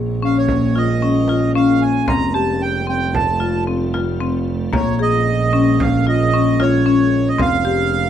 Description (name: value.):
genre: contemporary instrumental, chamber music in an uneven meter.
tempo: 113 BPM.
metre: 5/4.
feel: straight.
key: Bb dorian.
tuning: A4 = 440 Hz.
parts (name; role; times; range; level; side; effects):
soft additive organ-like pad; sustained chords; 0.0-8.1 s; G3 to F4; -25 LUFS; equal; ensemble chorus, built-in reverb.
marimba with hard mallets; arpeggios; 0.0-8.0 s; Bb3 to Ab4; -18 LUFS; left 6 dB; none.
clear double bass; bass; 0.0-8.1 s; F1 to Bb1; -20 LUFS; right 5 dB; none.
accordion; melody; 0.2-8.1 s; Db5 to Bb5; -21 LUFS; right 6 dB; none.
frame drum; percussion; 0.5-8.1 s; none; -24 LUFS; right 2 dB; none.
room: light reverb.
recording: close, detailed microphones.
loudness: -14 LUFS.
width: side -10 dB against mid.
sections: 0.0-8.1 A section.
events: none.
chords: 0.0 Bbm7; 2.1 Fadd9; 4.7 Bbm7; 7.4 Fadd9.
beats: 0.50 1.03 1.56 | 2.09 2.62 3.15 3.68 4.21 | 4.74 5.27 5.80 6.33 6.86 | 7.39 7.92.